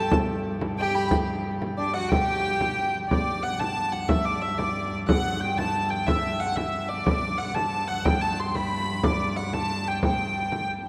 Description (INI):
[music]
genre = medieval dance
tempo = 121 BPM (dotted quarters)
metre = 6/8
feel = straight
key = G major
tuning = A4 = 439 Hz
[part]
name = clear hurdy-gurdy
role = melody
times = 0.0-10.7 s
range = D5 to C6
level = -29 LUFS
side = equal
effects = none
[part]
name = rich fiddle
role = second line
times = 0.0-2.9 s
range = D4 to A4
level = -33 LUFS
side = equal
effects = none
[part]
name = clear viola da gamba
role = drone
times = 0.0-10.9 s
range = G2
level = -35 LUFS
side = equal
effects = none
[part]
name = frame drum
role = percussion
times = 0.1-10.9 s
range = none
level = -30 LUFS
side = equal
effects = none
[sound]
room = wet church reverb, RT60 4.2 s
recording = none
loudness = -26 LUFS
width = mono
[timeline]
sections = 0.0-3.1 A section; 3.1-10.9 B section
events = none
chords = none